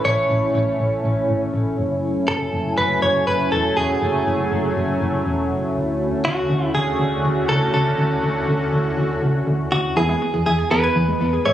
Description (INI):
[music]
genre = synth-pop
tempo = 121 BPM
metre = 4/4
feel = straight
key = unclear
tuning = A4 = 440 Hz
[part]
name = direct-recorded clean electric guitar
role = melody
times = 0.0-11.5 s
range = F#4 to C#5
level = -21 LUFS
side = right 1 dB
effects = ping-pong delay
[part]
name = sweeping resonant pad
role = sustained chords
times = 0.0-9.9 s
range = D3 to G#5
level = -22 LUFS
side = equal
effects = chorus
[part]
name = solid FM bass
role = bass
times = 0.0-11.5 s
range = E1 to G#2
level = -23 LUFS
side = equal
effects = none
[part]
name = soft round pluck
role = accompaniment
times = 10.0-11.4 s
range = B3 to G#4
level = -25 LUFS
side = right 2 dB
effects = chorus
[part]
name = soft round pluck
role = arpeggios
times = 10.0-11.5 s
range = E3 to G#6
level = -24 LUFS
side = right 1 dB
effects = chorus, ping-pong delay
[sound]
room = light reverb, digital ambience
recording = recorded on a phone in the room, studio ambience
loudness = -18 LUFS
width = side -11 dB against mid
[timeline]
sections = 0.0-10.0 A section; 10.0-11.5 B section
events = none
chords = 0.0 A; 1.8 F#m7; 5.8 Dmaj7; 10.0 E